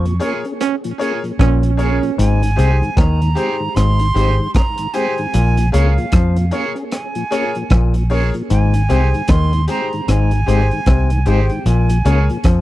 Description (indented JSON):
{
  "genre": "roots reggae",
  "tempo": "76 BPM",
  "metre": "4/4",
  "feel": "swing 59% on 16ths",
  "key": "Ab major",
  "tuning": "A4 = 440 Hz",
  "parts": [
    { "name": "silver concert flute", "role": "melody", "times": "0.0-12.5 s", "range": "F5 to Db6", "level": "-24 LUFS", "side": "right 4 dB", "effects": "tape echo" },
    { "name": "auto-wah clav", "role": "riff", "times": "0.0-12.6 s", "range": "Ab2 to F3", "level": "-22 LUFS", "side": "left 6 dB", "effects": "overdrive" },
    { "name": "vintage muted fingered electric bass", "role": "bass", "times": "0.0-12.6 s", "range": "Ab1 to F2", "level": "-14 LUFS", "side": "equal", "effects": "transformer saturation" },
    { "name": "mellow tonewheel organ", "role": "accompaniment", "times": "0.1-12.4 s", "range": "Ab2 to Ab4", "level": "-25 LUFS", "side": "left 2 dB", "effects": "chorus vibrato, slow rotary speaker, tape echo" },
    { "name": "crunchy breakbeat drum kit", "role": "drums", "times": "0.1-12.6 s", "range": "hi-hat, kick drum, rim click", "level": "-18 LUFS", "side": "equal", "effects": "none" },
    { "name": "electric guitar with an envelope filter", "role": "accompaniment", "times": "0.2-12.2 s", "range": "Eb4 to Db5", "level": "-28 LUFS", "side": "right 8 dB", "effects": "tremolo, tape echo" },
    { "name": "bright upright piano", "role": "stabs", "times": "0.2-12.3 s", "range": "G4 to Db5", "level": "-22 LUFS", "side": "left 4 dB", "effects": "none" },
    { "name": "brilliant trombone", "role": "second line", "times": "0.6-2.1 s", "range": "Db4", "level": "-20 LUFS", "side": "right 10 dB", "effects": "tape echo" }
  ],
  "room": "little or no reverb",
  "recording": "dry, close 1970s-style studio recording",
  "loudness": "-13 LUFS",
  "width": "side -16 dB against mid",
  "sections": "0.0-12.6 A section",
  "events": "band accent 0.0-2.2",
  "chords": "0.0 Bbm7; 2.2 Abmaj7; 5.3 Bbm7; 8.5 Abmaj7; 11.7 Bbm7"
}